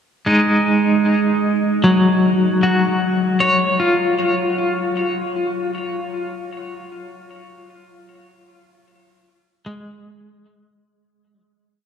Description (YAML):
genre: ambient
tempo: 76 BPM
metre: 4/4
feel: straight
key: Eb minor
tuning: A4 = 440 Hz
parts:
  - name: clean electric guitar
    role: solo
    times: 0.3-11.4 s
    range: Gb3 to Db5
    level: -16 LUFS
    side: equal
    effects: tremolo, tape echo
room: wet cathedral reverb, RT60 7.1 s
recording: in a vast, echoing space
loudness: -15 LUFS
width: side -8 dB against mid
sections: 0.0-10.9 A section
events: fade-out 6.7-10.9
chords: 0.0 Ebmadd9; 4.6 N.C.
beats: 0.66 | 1.44 2.23 3.02 3.80 | 4.58 5.37 6.14 6.92 | 7.70 8.48 9.27 10.07